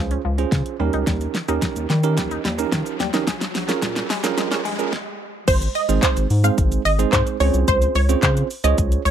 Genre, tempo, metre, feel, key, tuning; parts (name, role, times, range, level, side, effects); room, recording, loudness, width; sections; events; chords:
dance-pop; 109 BPM; 4/4; straight; Ab major; A4 = 440 Hz
bell-like tine electric piano; accompaniment; 0.0-9.0 s; Ab3 to Db5; -24 LUFS; right 13 dB; sidechain pumping
glassy wavetable pluck; arpeggios; 0.0-4.8 s; F3 to Eb4; -29 LUFS; left 2 dB; chorus, sidechain pumping, slapback echo
round analog bass; bass; 0.0-9.1 s; Ab1 to Eb3; -21 LUFS; left 1 dB; sidechain pumping
riser; sound effects; 0.2-4.9 s; -31 LUFS; left 1 dB
pop drum kit; drums; 0.1-9.1 s; crash cymbal, handclaps, hi-hat, kick drum, shaker, snare drum; -23 LUFS; left 1 dB
wide unison pluck; melody; 5.5-9.1 s; C5 to F5; -21 LUFS; right 1 dB; analog chorus, slapback echo
little or no reverb; dry, close 1970s-style studio recording, high-pass filter; -18 LUFS; side -9 dB against mid
0.0-5.5 A section; 5.5-9.1 B section
build-up 0.0-5.5; drum fill 0.0-4.9; filter sweep 0.0-5.5; riser 0.2-5.5; stop 4.9-5.5; drop 5.5-9.1
0.0 Dbmaj7; 0.8 Eb7; 3.3 Bbm7; 5.5 Ab; 7.4 Dbmaj7